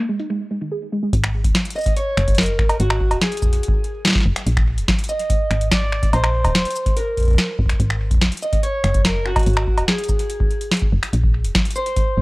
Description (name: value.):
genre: IDM.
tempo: 144 BPM.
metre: 4/4.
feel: straight.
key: unclear.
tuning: A4 = 438 Hz.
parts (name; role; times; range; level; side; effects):
soft round pluck; arpeggios; 0.0-1.1 s; D#3 to G#4; -23 LUFS; right 1 dB; analog chorus, tape echo.
electro analog drum machine; drums; 0.2-12.0 s; cabasa, cowbell, finger snaps, hi-hat, snare drum; -21 LUFS; equal; low-pass filter on snare, low-pass filter on hats, low-pass filter on perc, low-pass filter on room.
woody FM bass; bass; 1.1-12.2 s; D#1 to A#1; -20 LUFS; equal; none.
electronic kick drum; drums; 1.1-12.0 s; none; -19 LUFS; equal; none.
electric guitar at the edge of break-up; melody; 1.8-12.2 s; F#4 to D#5; -24 LUFS; equal; vintage 12-bit sampler grit, tape echo.
room: little or no reverb.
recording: dry, gritty hardware recording.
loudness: -16 LUFS.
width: side -22 dB against mid.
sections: 0.0-1.1 A section; 1.1-12.2 B section.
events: filter sweep on synth arpeggio sound 0.0-1.1.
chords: 0.0 A#7sus4 (rootless); 1.1 G#7(no3); 4.5 A#7sus2; 7.8 G#7(no3); 11.1 A#sus2.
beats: 0.30 0.72 | 1.13 1.55 1.97 2.38 | 2.80 3.22 3.63 4.05 | 4.47 4.88 5.30 5.72 | 6.13 6.55 6.97 7.38 | 7.80 8.22 8.63 9.05 | 9.47 9.88 10.30 10.72 | 11.13 11.55 11.97.